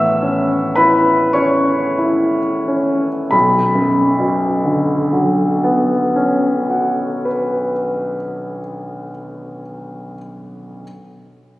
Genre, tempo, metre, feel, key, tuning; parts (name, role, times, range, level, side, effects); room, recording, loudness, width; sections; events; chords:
classical, impressionist solo piano; 28-38 BPM (dotted quarters); 9/8; rubato; B minor; A4 = 440 Hz
clear concert grand piano; solo; 0.0-10.8 s; B1 to E6; -15 LUFS; equal
wet church reverb, RT60 2.5 s; recorded on a phone in the room, club reverb, compression; -14 LUFS; side -17 dB against mid
0.0-3.3 A section; 3.3-8.7 B section
slowing down 0.0-3.3
0.0 Aadd9; 3.3 Bmadd9